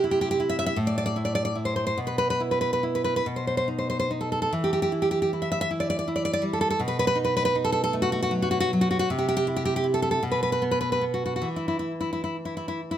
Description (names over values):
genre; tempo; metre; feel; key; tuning
romantic piece for solo classical guitar; 44-54 BPM (dotted quarters); 6/8; rubato; E minor; A4 = 438 Hz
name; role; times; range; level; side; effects
nylon-string guitar; solo; 0.0-13.0 s; A2 to E5; -23 LUFS; equal; none
room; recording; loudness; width
light reverb; close, detailed microphones; -23 LUFS; side -10 dB against mid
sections
0.0-13.0 A section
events
none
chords
0.0 C; 0.8 Amadd11; 2.0 E5/B; 3.2 B; 4.5 Em; 6.8 B7; 9.1 C; 10.2 N.C.